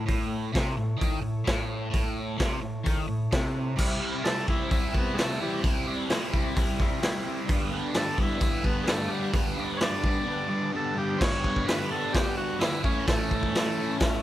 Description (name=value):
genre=garage rock duo or trio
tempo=130 BPM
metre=4/4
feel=straight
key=unclear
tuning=A4 = 441 Hz
part: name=combo organ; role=sustained chords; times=0.0-14.2 s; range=D4 to B5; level=-39 LUFS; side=equal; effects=none
part: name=crunchy overdriven guitar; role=riff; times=0.0-14.2 s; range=G2 to E4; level=-29 LUFS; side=equal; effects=phaser
part: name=raw garage drum kit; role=drums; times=0.1-14.1 s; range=crash cymbal, hi-hat, kick drum, snare drum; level=-27 LUFS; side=equal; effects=none
part: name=combo organ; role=melody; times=4.2-14.0 s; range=E3 to D5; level=-31 LUFS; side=equal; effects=none
room=light reverb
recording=none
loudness=-25 LUFS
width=side -14 dB against mid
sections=0.0-3.8 A section; 3.8-11.2 B section; 11.2-14.2 C section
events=transistor combo organ fill 13.5-14.2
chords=0.0 A; 3.8 C; 7.5 G; 12.8 A